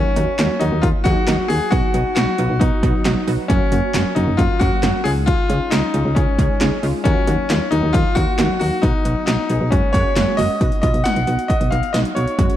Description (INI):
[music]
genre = synth-pop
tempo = 135 BPM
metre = 4/4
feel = straight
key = unclear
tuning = A4 = 441 Hz
[part]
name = bright grand piano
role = melody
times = 0.0-12.6 s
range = C#4 to F#5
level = -21 LUFS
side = left 3 dB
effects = none
[part]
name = analog pluck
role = accompaniment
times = 0.0-12.5 s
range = F#3 to G#4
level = -24 LUFS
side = right 3 dB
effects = chorus
[part]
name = solid FM bass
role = bass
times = 0.0-12.5 s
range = F#1 to D#2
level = -20 LUFS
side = equal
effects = none
[part]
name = 80s electronic pad drums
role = drums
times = 0.2-12.6 s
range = handclaps, hi-hat, kick drum, snare drum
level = -20 LUFS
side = equal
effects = overdrive
[sound]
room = light reverb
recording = dark, warm production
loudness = -15 LUFS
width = side -12 dB against mid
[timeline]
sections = 0.0-10.6 A section; 10.6-12.6 B section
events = none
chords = 0.0 D#m; 1.7 B; 3.5 F#; 5.1 C#add9; 7.1 D#m; 8.8 B; 9.7 F#add9; 10.6 B